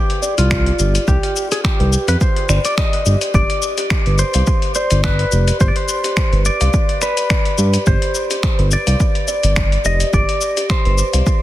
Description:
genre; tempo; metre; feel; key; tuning
organic downtempo; 106 BPM; 4/4; swing 55% on 16ths; unclear; A4 = 440 Hz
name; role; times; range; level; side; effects
clean lap steel guitar; melody; 0.0-11.4 s; F4 to Eb5; -21 LUFS; equal; ping-pong delay
dusty soul sampler-style drum kit; drums; 0.1-11.4 s; finger snaps, hi-hat, shaker; -22 LUFS; left 3 dB; soft clipping on snare
kalimba; arpeggios; 0.2-11.3 s; G4 to F5; -24 LUFS; equal; digital delay
smooth synth bass; bass; 0.4-11.2 s; F1 to G2; -15 LUFS; equal; none
electronic kick drum; drums; 0.5-11.4 s; none; -17 LUFS; equal; overdrive
room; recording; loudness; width
digital ambience; dense, heavily limited modern master; -14 LUFS; side -14 dB against mid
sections
0.0-11.4 A section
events
none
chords
0.0 Csus2; 3.3 Gsus4

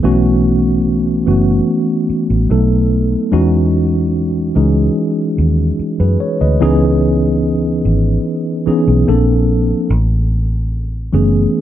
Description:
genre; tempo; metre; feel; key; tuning
contemporary R&B; 73 BPM; 4/4; straight; E major; A4 = 442 Hz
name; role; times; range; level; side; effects
mellow tine electric piano; accompaniment; 0.0-11.6 s; E3 to D#5; -14 LUFS; equal; fast stereo tremolo
vintage muted fingered electric bass; bass; 0.0-11.5 s; F#1 to F#2; -15 LUFS; equal; none
room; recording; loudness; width
light reverb, digital ambience; dark, warm production; -12 LUFS; side -11 dB against mid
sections
0.0-6.6 A section; 6.6-11.6 B section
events
none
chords
0.0 B9sus4; 2.5 B7; 3.3 Emaj13; 6.6 C#m9; 9.1 A#maj9; 9.9 Amaj9

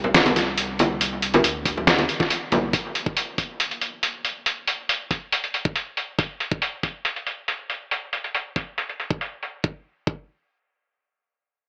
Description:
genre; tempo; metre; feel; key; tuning
deep dubstep; 139 BPM; 4/4; half-time; unclear; A4 = 439 Hz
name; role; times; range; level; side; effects
soft dub sub bass; bass; 0.0-2.7 s; C2 to D2; -36 LUFS; equal; none
congas; percussion; 0.0-2.6 s; none; -26 LUFS; equal; dub echo
trip hop sampler-style drum kit; drums; 0.1-9.5 s; hi-hat, snare drum; -24 LUFS; equal; low-pass filter on hats, low-pass filter on snare
electronic kick drum; drums; 1.7-10.2 s; none; -27 LUFS; equal; none
room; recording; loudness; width
moderate huge ambient reverb, RT60 4.3 s; AM radio sound; -25 LUFS; mono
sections
0.0-9.6 A section; 9.6-11.7 B section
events
none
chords
none

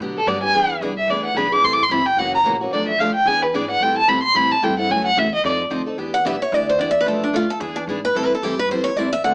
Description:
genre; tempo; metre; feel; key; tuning
acoustic string swing (jazz manouche); 221 BPM; 4/4; swing 57% on 8ths; E minor; A4 = 437 Hz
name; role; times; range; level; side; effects
picked steel-string acoustic guitar; accompaniment; 0.0-9.3 s; B2 to A4; -24 LUFS; equal; none
upright bass; bass; 0.0-9.3 s; F#1 to B2; -32 LUFS; equal; none
dark violin; melody; 0.2-5.5 s; A4 to D6; -16 LUFS; equal; plate reverb
picked steel-string acoustic guitar; second line; 6.1-9.3 s; D4 to F#5; -18 LUFS; equal; none
room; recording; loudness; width
moderate studio reverb, RT60 0.6 s; small speaker sound; -16 LUFS; side -36 dB against mid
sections
0.0-6.0 A section; 6.0-9.3 A section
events
violin solo 0.0-6.0; steel-string acoustic guitar solo 6.0-9.3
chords
0.0 Gmaj9; 0.5 E7; 1.6 Am7; 2.2 F#7; 2.7 Bm7b5; 3.3 E7; 3.8 Am7; 4.9 F#m7; 5.4 F6; 6.0 Em7; 7.1 Bm7b5; 7.6 E7; 8.2 Am7

